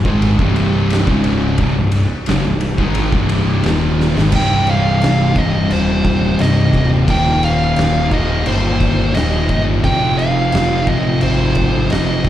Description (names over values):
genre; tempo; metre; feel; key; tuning
stoner and doom metal; 87 BPM; 4/4; straight; C minor; A4 = 439 Hz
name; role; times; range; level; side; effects
cranked stack guitar; riff; 0.0-12.3 s; C2 to Ab3; -23 LUFS; right 1 dB; overdrive, slapback echo
thick fuzz guitar; riff; 0.0-12.3 s; C2 to Ab3; -18 LUFS; left 4 dB; distortion
fuzz picked electric bass; bass; 0.0-12.3 s; C1 to Ab1; -19 LUFS; right 1 dB; overdrive
thick fuzz guitar; riff; 0.1-12.3 s; C2 to Ab3; -23 LUFS; right 7 dB; distortion
oversized low-tuned drum kit; drums; 0.1-12.3 s; crash cymbal, kick drum, ride cymbal, snare drum; -20 LUFS; right 1 dB; none
fuzz lead guitar; melody; 4.4-12.3 s; C5 to G5; -20 LUFS; right 1 dB; distortion, slapback echo, digital delay
room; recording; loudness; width
small room ambience; live gig heard through the venue's PA, recital hall reverb; -13 LUFS; side -12 dB against mid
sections
0.0-4.3 A section; 4.3-12.3 B section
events
drum fill 4.0-4.3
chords
0.0 Cm; 7.1 Eb; 9.8 Fm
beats
0.23 0.91 | 1.59 2.28 2.96 3.65 | 4.34 5.02 5.71 6.40 | 7.08 7.77 8.46 9.15 | 9.84 10.53 11.22 11.91